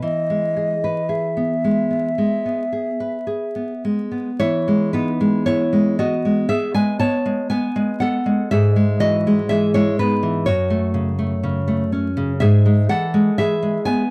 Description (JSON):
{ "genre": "romantic duo for flute and classical guitar", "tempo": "52-62 BPM", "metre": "4/4", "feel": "rubato", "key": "E major", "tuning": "A4 = 440 Hz", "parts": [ { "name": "mellow hollow concert flute", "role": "melody", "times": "0.0-3.8 s", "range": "D#5 to E5", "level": "-25 LUFS", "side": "equal", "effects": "none" }, { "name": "nylon-string guitar", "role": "accompaniment", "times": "0.0-14.1 s", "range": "F#2 to A5", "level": "-20 LUFS", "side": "equal", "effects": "none" } ], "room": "moderate booth ambience, RT60 0.2 s", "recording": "dry, close 1970s-style studio recording, vinyl crackle", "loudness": "-19 LUFS", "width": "mono", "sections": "0.0-4.4 A section; 4.4-14.1 A section", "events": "none", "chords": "0.0 E; 8.5 E/G#; 10.5 F#m; 12.4 E/G#" }